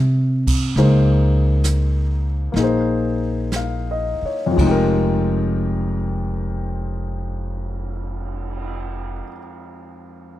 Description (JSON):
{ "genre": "jazz ballad", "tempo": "55-70 BPM", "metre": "4/4", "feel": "swing 67% on 8ths", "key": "F minor", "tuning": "A4 = 442 Hz", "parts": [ { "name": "upright bass", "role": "bass", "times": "0.0-9.2 s", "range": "F1 to C3", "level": "-20 LUFS", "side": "equal", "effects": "none" }, { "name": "jazz brush drum kit", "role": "drums", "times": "0.5-8.7 s", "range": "brushed snare drum, crash cymbal, cymbal swell, hi-hat, kick drum, ride cymbal, snare drum", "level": "-26 LUFS", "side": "right 2 dB", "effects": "none" }, { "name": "warm concert grand piano", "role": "accompaniment", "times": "0.8-10.4 s", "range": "F2 to F5", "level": "-23 LUFS", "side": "left 2 dB", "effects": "none" } ], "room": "little or no reverb", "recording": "close, detailed microphones", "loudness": "-18 LUFS", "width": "side -14 dB against mid", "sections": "0.8-4.6 A section; 4.6-8.9 B section", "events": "slowing down 0.0-4.6", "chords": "0.0 N.C.; 0.8 Db5; 2.5 Bbsus2; 4.6 Fm11" }